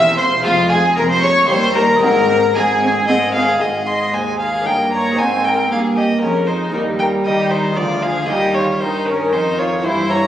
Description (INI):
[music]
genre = classical, baroque-style concerto movement with solo episodes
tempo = 116 BPM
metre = 3/4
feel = straight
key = Ab major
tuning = A4 = 440 Hz
[part]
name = rich violin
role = melody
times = 0.0-10.3 s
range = F4 to C6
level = -18 LUFS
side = left 1 dB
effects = none
[part]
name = warm chamber violin section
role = melody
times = 0.0-10.2 s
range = Db4 to E6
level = -22 LUFS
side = equal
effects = none
[part]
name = warm chamber violin section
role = second line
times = 0.0-10.3 s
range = Db4 to E5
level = -21 LUFS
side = left 1 dB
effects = none
[part]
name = dark chamber viola section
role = accompaniment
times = 0.0-10.3 s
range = Eb3 to C4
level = -22 LUFS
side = right 2 dB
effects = none
[part]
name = lute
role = accompaniment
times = 0.0-10.3 s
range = D2 to Ab4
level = -25 LUFS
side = equal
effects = none
[part]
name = rich chamber cello section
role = bass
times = 0.0-10.3 s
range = D2 to Eb3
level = -23 LUFS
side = right 1 dB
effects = none
[part]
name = warm studio double bass section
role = bass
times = 0.0-3.6 s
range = E1 to Eb2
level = -27 LUFS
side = right 2 dB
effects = none
[sound]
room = moderate recital hall reverb, RT60 1.6 s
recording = recorded on a phone in the room, club reverb, compression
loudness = -14 LUFS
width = side -11 dB against mid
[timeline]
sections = 0.0-3.6 A section; 3.6-10.3 B section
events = none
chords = 0.4 Fm; 1.5 Eb; 2.0 Ab; 4.7 Eb7/G; 5.2 Ab; 6.7 Eb; 7.8 Bb7/D; 8.3 Eb